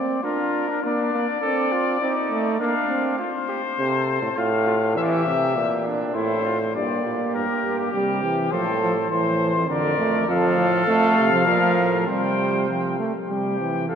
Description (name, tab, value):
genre	classical, imitative canzona for brass ensemble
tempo	102 BPM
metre	3/4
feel	straight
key	Bb major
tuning	A4 = 444 Hz
part	mellow trumpet	melody	0.0-14.0 s	G4 to G5	-25 LUFS	left 6 dB	none
part	clear trombone	accompaniment	0.0-3.2, 6.7-13.9 s	D3 to D4	-24 LUFS	right 2 dB	none
part	mellow trumpet	second line	0.2-14.0 s	D4 to C5	-27 LUFS	right 3 dB	none
part	clear bass trombone	bass	3.8-14.0 s	F2 to E3	-25 LUFS	right 1 dB	none
room	wet cathedral reverb, RT60 4.5 s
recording	none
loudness	-19 LUFS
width	side -8 dB against mid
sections	0.0-6.7 A section; 6.7-13.9 B section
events	none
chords	0.0 Bb; 1.4 Adim/C; 2.6 Bb; 3.2 F (rootless); 4.4 F/A; 5.0 Edim; 6.1 F/A; 6.7 Gm; 7.9 C; 8.5 F/A; 9.7 Bb/F; 10.3 F; 11.5 Bb5; 12.1 Csus4; 13.3 C